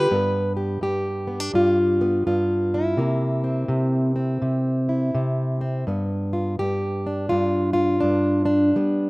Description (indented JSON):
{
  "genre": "acoustic country blues, solo or duo",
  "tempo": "83 BPM",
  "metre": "4/4",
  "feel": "swing 63% on 8ths",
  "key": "G mixolydian",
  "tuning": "A4 = 438 Hz",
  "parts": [
    { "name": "fingerpicked plugged-in old ladder-braced acoustic guitar", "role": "solo", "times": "0.0-9.1 s", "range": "G2 to B4", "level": "-20 LUFS", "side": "equal", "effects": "slapback echo" }
  ],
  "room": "little or no reverb",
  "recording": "recorded outdoors, with no room sound",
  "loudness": "-20 LUFS",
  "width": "side -23 dB against mid",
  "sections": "0.1-9.1 A section",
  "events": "none",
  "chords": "0.1 G7; 3.0 C7; 5.9 G7"
}